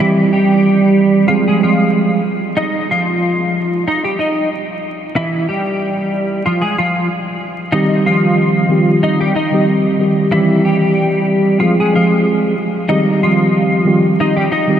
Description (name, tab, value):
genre	hip hop, boom-bap hip-hop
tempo	93 BPM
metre	4/4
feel	swing 54% on 16ths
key	C minor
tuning	A4 = 440 Hz
part	clean electric guitar	melody	0.0-14.8 s	E3 to Eb5	-16 LUFS	equal	analog chorus, diffuse ambient delay
part	mellow tine electric piano	accompaniment	0.0-2.2, 7.7-14.8 s	Eb3 to Ab4	-14 LUFS	right 1 dB	medium stereo tremolo, cassette tape
room	wet huge ambient reverb, RT60 7.6 s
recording	dreamy mix soaked in reverb, vinyl crackle, faint mains hum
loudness	-12 LUFS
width	side -9 dB against mid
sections	0.0-14.8 A section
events	break 2.6-7.7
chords	0.0 C; 1.3 Fm; 2.6 Ebsus2/F; 5.2 Em; 6.5 Fm; 7.7 Cm; 10.3 C; 11.6 Fm; 12.9 Cm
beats	| 0.00 0.65 1.29 1.94 | 2.58 3.23 3.87 4.52 | 5.16 5.81 6.45 7.10 | 7.74 8.39 9.03 9.68 | 10.32 10.97 11.61 12.26 | 12.90 13.55 14.19